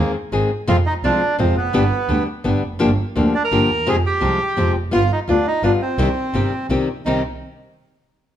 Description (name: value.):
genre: tango.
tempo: 170 BPM.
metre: 3/4.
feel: rubato.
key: C minor.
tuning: A4 = 440 Hz.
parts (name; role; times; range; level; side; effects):
bandoneon; melody; 0.0-7.2 s; Bb3 to Bb4; -21 LUFS; right 3 dB; none.
nylon-string guitar; accompaniment; 0.0-7.2 s; C3 to Ab4; -20 LUFS; left 3 dB; none.
clear double bass; bass; 0.0-7.2 s; F1 to F2; -22 LUFS; right 2 dB; none.
room: moderate large studio reverb, RT60 1.2 s.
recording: dark, warm production.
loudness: -16 LUFS.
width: side -10 dB against mid.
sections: 0.0-7.1 A section; 7.1-8.1 B section.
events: none.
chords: 0.0 Abadd9; 0.7 Fm; 1.7 G; 2.8 Gm7; 3.9 Fmadd9; 4.9 G7; 6.0 Cm.